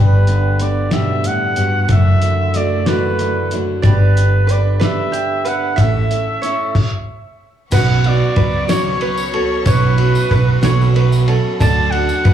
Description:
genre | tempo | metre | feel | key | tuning
indie folk with a building arrangement | 62 BPM (dotted quarters) | 6/8 | straight | unclear | A4 = 441 Hz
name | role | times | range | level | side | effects
mellow trumpet | melody | 0.0-12.3 s | B4 to A5 | -21 LUFS | right 2 dB | slapback echo, digital delay
dark concert grand piano | accompaniment | 0.0-12.3 s | F#1 to F#5 | -26 LUFS | right 2 dB | slapback echo
fingerpicked steel-string acoustic guitar | accompaniment | 0.0-5.8 s | F#2 to D4 | -20 LUFS | left 1 dB | none
picked steel-string acoustic guitar | accompaniment | 0.0-12.3 s | F#2 to B4 | -23 LUFS | left 6 dB | slapback echo
hollow-body short-scale fingered electric bass | bass | 0.0-12.3 s | F#1 to F#2 | -14 LUFS | right 1 dB | none
cloth-damped thuddy drum kit | drums | 0.3-12.3 s | crash cymbal, hi-hat, kick drum, ride cymbal, snare drum | -20 LUFS | equal | none
ukulele | arpeggios | 3.8-12.3 s | G4 to E5 | -23 LUFS | right 5 dB | slapback echo, digital delay
warm chamber string section | sustained chords | 7.7-12.3 s | D4 to C#6 | -30 LUFS | left 3 dB | none
tambourine | percussion | 7.7-12.3 s | none | -33 LUFS | left 2 dB | none
room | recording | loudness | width
small room ambience | live gig heard through the venue's PA, club reverb | -13 LUFS | side -10 dB against mid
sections
0.0-7.7 A section; 7.7-12.3 B section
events
stop 6.7-7.7; grand piano fill 10.6-11.6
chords
0.0 G; 1.9 Dadd9/F#; 3.8 G; 5.8 A; 7.7 Bsus2; 11.6 D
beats
0.93 | 1.90 2.87 | 3.84 4.81 | 5.78 6.75 | 7.72 8.69 | 9.66 10.63 | 11.61

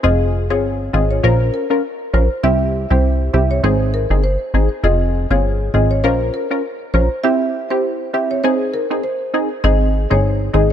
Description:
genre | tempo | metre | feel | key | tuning
dancehall | 100 BPM | 4/4 | swing 56% on 16ths | unclear | A4 = 440 Hz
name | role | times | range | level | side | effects
marimba with medium mallets | melody | 0.0-10.7 s | Bb4 to E5 | -21 LUFS | right 1 dB | tape echo
punchy chord stab | accompaniment | 0.0-10.7 s | C4 to Bb4 | -19 LUFS | left 1 dB | chorus
plucky analog bass | bass | 0.0-10.7 s | F1 to C2 | -16 LUFS | equal | none
room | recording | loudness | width
small room ambience | none | -15 LUFS | side -9 dB against mid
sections
0.0-9.6 A section; 9.6-10.7 B section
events
none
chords
0.0 Fm; 1.2 Bbm; 2.4 C; 3.6 Ab; 4.8 Fm; 6.0 Bbm; 7.2 C; 8.4 Ab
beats
| 0.04 0.64 1.24 1.84 | 2.44 3.04 3.64 4.24 | 4.84 5.44 6.04 6.64 | 7.24 7.84 8.44 9.04 | 9.64 10.24

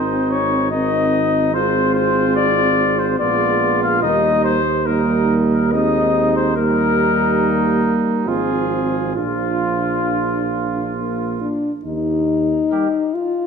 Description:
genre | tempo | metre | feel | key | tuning
classical, brass quintet | 66-73 BPM | 3/4 | rubato | unclear | A4 = 440 Hz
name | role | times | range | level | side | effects
mellow trumpet | melody | 0.0-12.9 s | F4 to F5 | -20 LUFS | left 6 dB | none
mellow trumpet | second line | 0.0-12.9 s | Eb4 to G4 | -23 LUFS | right 7 dB | none
mellow French horn | accompaniment | 0.0-13.5 s | Bb3 to F4 | -21 LUFS | left 3 dB | none
mellow trombone | accompaniment | 0.0-12.9 s | Eb3 to Ab3 | -25 LUFS | right 5 dB | none
warm tuba | bass | 0.0-12.6 s | Ab1 to Eb2 | -23 LUFS | right 6 dB | none
room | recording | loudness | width
wet recital hall reverb, RT60 1.5 s | dark, warm production | -15 LUFS | side -6 dB against mid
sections
0.0-11.9 A section; 11.9-13.5 B section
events
none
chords
0.0 Ab; 1.5 Fm/Ab; 3.2 Bb7b9; 4.0 Eb; 5.7 Ab/Eb; 6.6 Eb; 8.3 Fm/Ab; 9.2 Bb; 11.9 N.C.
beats
0.72 | 1.54 2.37 3.20 | 4.03 4.87 5.74 | 6.57 7.41 8.27 | 9.16 10.06 10.96 | 11.86 12.72

